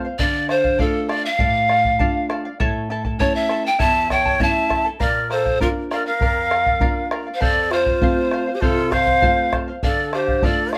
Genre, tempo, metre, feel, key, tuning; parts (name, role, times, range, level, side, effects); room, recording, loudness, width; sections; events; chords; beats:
andean folk, Andean ensemble; 100 BPM; 4/4; straight; D minor; A4 = 439 Hz
charango; accompaniment; 0.0-10.8 s; E4 to A5; -30 LUFS; equal
nylon-string guitar; accompaniment; 0.0-10.8 s; E2 to F4; -29 LUFS; equal
breathy pan flute; melody; 0.2-10.8 s; A4 to A5; -22 LUFS; equal
bombo; percussion; 0.2-10.8 s; -26 LUFS; equal
breathy large quena; second line; 3.8-10.8 s; F4 to F5; -27 LUFS; equal
moderate studio ambience, RT60 0.5 s; -19 LUFS; mono
0.0-10.8 A section
0.2 Dm; 2.6 A; 5.0 Bb; 7.4 F; 9.8 Dm
| 0.20 0.80 1.40 2.00 | 2.60 3.20 3.80 4.40 | 5.00 5.61 6.21 6.81 | 7.41 8.01 8.62 9.22 | 9.82 10.42